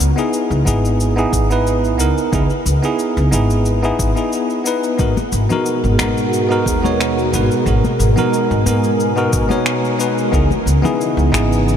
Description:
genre	sunset chillout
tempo	90 BPM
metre	4/4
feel	straight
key	unclear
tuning	A4 = 440 Hz
part	upright bass	bass	0.0-11.8 s	G#1 to G#2	-17 LUFS	equal	none
part	electronic cabasa and finger snaps	drums	0.0-11.8 s	none	-26 LUFS	left 1 dB	overdrive
part	bell-like tine electric piano	accompaniment	0.2-11.8 s	B3 to C#5	-18 LUFS	moving between left 3 dB and right 4 dB	auto-pan, low-pass filter, ping-pong delay
part	electronic kick drum	drums	0.7-11.5 s	none	-21 LUFS	equal	overdrive
part	soft string machine	sustained chords	5.4-11.8 s	B2 to D#5	-20 LUFS	equal	ensemble chorus
part	congas	percussion	5.2-11.5 s	none	-27 LUFS	left 3 dB	none
room	moderate huge ambient reverb, RT60 8.1 s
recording	dreamy mix soaked in reverb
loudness	-14 LUFS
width	side -8 dB against mid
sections	0.0-11.8 A section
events	none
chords	0.0 C#m9; 5.0 G#m9; 10.3 C#m9

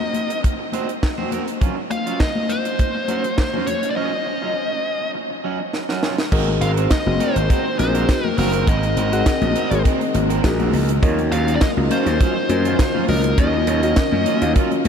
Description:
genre	early-eighties boogie funk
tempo	102 BPM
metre	4/4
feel	straight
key	Eb dorian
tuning	A4 = 440 Hz
part	nasal lead guitar with a parked wah	melody	0.0-14.5 s	Bb4 to F5	-24 LUFS	left 1 dB	overdrive, tape echo
part	electric guitar at the edge of break-up	riff	0.0-14.9 s	Gb3 to C5	-27 LUFS	right 5 dB	lush chorus
part	congas	percussion	0.0-14.9 s	none	-28 LUFS	left 5 dB	none
part	tight funk drum kit	drums	0.1-14.9 s	crash cymbal, handclaps, hi-hat, kick drum, snare drum	-22 LUFS	equal	none
part	tine electric piano	accompaniment	6.3-14.9 s	C4 to Gb5	-24 LUFS	left 2 dB	phaser
part	string machine, full ensemble	sustained chords	6.3-14.9 s	Eb3 to F5	-27 LUFS	equal	none
part	gritty slap bass	bass	6.3-14.9 s	Gb1 to Gb2	-20 LUFS	equal	overdrive
room	moderate huge ambient reverb, RT60 7.6 s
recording	dreamy mix soaked in reverb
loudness	-17 LUFS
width	side -7 dB against mid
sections	0.0-6.3 A section; 6.3-14.9 B section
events	break 4.0-6.3; drum fill 5.7-6.3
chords	0.0 Cm7b5; 1.6 Ebm9; 6.3 Ab9; 11.0 Ebm9

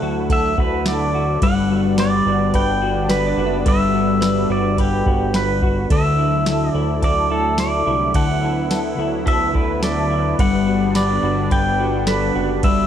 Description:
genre	dream pop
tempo	107 BPM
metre	4/4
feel	straight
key	G major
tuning	A4 = 441 Hz
part	pedal steel guitar	melody	0.0-12.9 s	G4 to G5	-22 LUFS	right 1 dB	digital delay
part	lush unison pad	sustained chords	0.0-12.9 s	D3 to E4	-24 LUFS	right 2 dB	chorus
part	semi-hollow electric guitar	arpeggios	0.0-12.9 s	D3 to B4	-21 LUFS	left 4 dB	ensemble chorus, digital delay
part	fat analog bass	bass	0.0-12.9 s	F#1 to D2	-24 LUFS	right 1 dB	none
part	soft vintage rhythm box	drums	0.3-12.8 s	kick drum, ride cymbal, snare drum, tambourine	-21 LUFS	right 1 dB	overdrive
part	glassy synth bell	texture	0.3-12.9 s	E4 to F#5	-32 LUFS	right 2 dB	none
room	light reverb, digital ambience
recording	dark, warm production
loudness	-16 LUFS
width	side -9 dB against mid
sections	0.0-12.9 A section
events	none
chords	0.0 Dadd9; 1.4 Gmaj7; 5.9 Dadd9; 10.4 Gmaj7

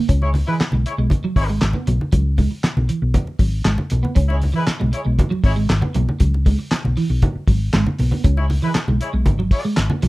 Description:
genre	funk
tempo	118 BPM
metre	4/4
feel	straight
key	C# minor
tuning	A4 = 439 Hz
part	clean electric guitar	riff	0.0-10.1 s	E3 to C#4	-24 LUFS	right 3 dB	ensemble chorus
part	hollow-body short-scale fingered electric bass	bass	0.1-10.1 s	G#1 to C#2	-18 LUFS	equal	none
part	cloth-damped thuddy drum kit	drums	0.1-10.1 s	handclaps, hi-hat, kick drum, snare drum	-18 LUFS	equal	none
part	congas	percussion	0.1-10.1 s	none	-24 LUFS	right 1 dB	none
part	mellow horn section	second line	0.2-9.6 s	G#3 to C#5	-27 LUFS	left 2 dB	none
room	light reverb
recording	rough home demo mix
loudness	-16 LUFS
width	side -20 dB against mid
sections	0.1-10.1 A section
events	none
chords	0.1 C#7(no3)

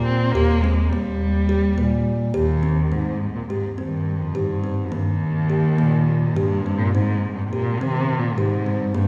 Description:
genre	contemporary instrumental, chamber music in an uneven meter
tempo	209 BPM (eighths)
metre	7/8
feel	straight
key	Ab major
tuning	A4 = 441 Hz
part	kalimba	arpeggios	0.0-9.1 s	Bb3 to G4	-29 LUFS	equal	none
part	dark bass clarinet	bass	0.0-9.1 s	Eb2 to Eb3	-25 LUFS	equal	none
part	rich cello	melody	0.1-9.1 s	Eb2 to C4	-24 LUFS	equal	none
room	wet concert hall reverb, RT60 2.4 s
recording	heard from further back in the room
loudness	-21 LUFS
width	mono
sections	0.0-2.9 A section; 2.9-9.1 B section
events	none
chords	0.0 Eb; 2.9 Abmaj7; 4.9 Eb; 6.9 Abmaj7

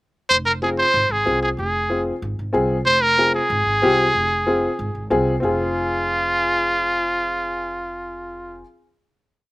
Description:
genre	latin, cumbia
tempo	187 BPM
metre	4/4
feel	straight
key	F minor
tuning	A4 = 440 Hz
part	bright trumpet	melody	0.3-8.6 s	F4 to C5	-19 LUFS	equal	none
part	upright bass	bass	0.3-8.6 s	F1 to C2	-28 LUFS	right 1 dB	none
part	dark upright piano	accompaniment	0.6-8.6 s	C4 to Ab4	-22 LUFS	left 1 dB	none
room	little or no reverb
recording	recorded outdoors, with no room sound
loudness	-17 LUFS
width	side -20 dB against mid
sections	0.3-5.4 groove; 5.4-8.0 final chord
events	none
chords	0.3 Fm

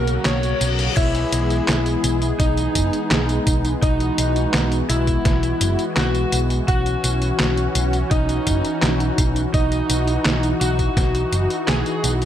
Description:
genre	synthwave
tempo	84 BPM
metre	4/4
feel	straight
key	unclear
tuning	A4 = 440 Hz
part	lead guitar through a small cranked amp	melody	0.0-12.1 s	D#4 to C#5	-24 LUFS	left 1 dB	overdrive, ping-pong delay
part	FM electric piano with soft pad layer	second line	0.0-12.1 s	D#5 to C#6	-30 LUFS	equal	chorus, ping-pong delay
part	brassy analog pad	sustained chords	0.0-12.3 s	C#3 to G#4	-26 LUFS	left 1 dB	chorus, sidechain pumping
part	hollow-body short-scale picked electric bass	bass	0.0-12.3 s	F#1 to B1	-22 LUFS	equal	none
part	reverse cymbal	sound effects	0.0-1.0 s	none	-29 LUFS	left 6 dB	none
part	detuned 8-bit digital drum machine	drums	0.1-12.3 s	crash cymbal, handclaps, hi-hat, snare drum, tambourine	-24 LUFS	equal	none
part	electronic kick drum	drums	1.0-11.1 s	none	-21 LUFS	equal	none
room	light reverb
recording	none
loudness	-17 LUFS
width	side -10 dB against mid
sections	0.0-12.3 A section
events	reverse cymbal 0.0-1.0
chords	0.0 F#; 1.0 Emaj7; 6.7 D#m7

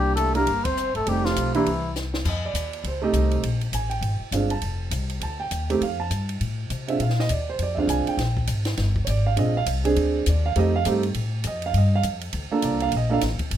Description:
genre	jazz, small-group swing and bop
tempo	202 BPM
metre	4/4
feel	swing 61% on 8ths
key	F mixolydian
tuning	A4 = 440 Hz
part	trumpet with cup mute	melody	0.0-1.9 s	E4 to C5	-25 LUFS	left 5 dB	none
part	breathy tenor saxophone	second line	0.0-1.9 s	E3 to C4	-30 LUFS	right 4 dB	none
part	warm grand piano	accompaniment	0.0-13.2 s	Ab3 to A5	-25 LUFS	right 5 dB	none
part	upright bass	bass	0.0-13.6 s	F1 to C3	-24 LUFS	left 1 dB	none
part	compact cocktail drum kit	drums	0.2-13.6 s	crash cymbal, hi-hat, kick drum, ride cymbal, snare drum	-32 LUFS	equal	none
room	moderate studio reverb, RT60 0.6 s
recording	none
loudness	-21 LUFS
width	side -10 dB against mid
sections	0.0-2.3 A section; 2.3-13.6 B section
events	band accent 0.6; drum fill 2.0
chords	0.0 C7; 1.1 F7; 1.7 C; 2.3 F7; 3.4 Bb7; 4.6 F7; 7.0 Bb7; 10.6 F7; 11.7 Gm7

